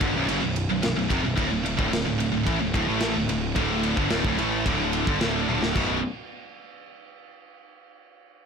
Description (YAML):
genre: heavy metal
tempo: 110 BPM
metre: 4/4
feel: straight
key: B minor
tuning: A4 = 440 Hz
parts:
  - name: heavy high-gain guitar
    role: riff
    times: 0.0-6.0 s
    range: B1 to A3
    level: -29 LUFS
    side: left 13 dB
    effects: distortion
  - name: heavy high-gain guitar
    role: riff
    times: 0.0-6.0 s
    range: B1 to A3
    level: -28 LUFS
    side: right 12 dB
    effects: distortion
  - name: overdriven electric guitar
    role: riff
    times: 0.0-6.0 s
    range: B1 to A3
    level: -30 LUFS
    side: equal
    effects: none
  - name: fuzz picked electric bass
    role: bass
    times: 0.0-6.0 s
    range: B0 to A1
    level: -30 LUFS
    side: equal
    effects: overdrive
  - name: tight metal drum kit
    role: drums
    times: 0.0-5.9 s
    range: crash cymbal, kick drum, ride cymbal, snare drum, toms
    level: -30 LUFS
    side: equal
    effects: soft clipping on kick
room: little or no reverb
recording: blown-out, overdriven recording, overdrive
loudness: -22 LUFS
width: side -6 dB against mid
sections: 0.0-5.7 A section; 5.7-7.9 B section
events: drum fill 5.5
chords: 0.0 Bm; 1.4 D5; 5.7 B5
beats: 0.28 0.83 | 1.38 1.92 2.47 3.02 | 3.56 4.11 4.66 5.20 | 5.75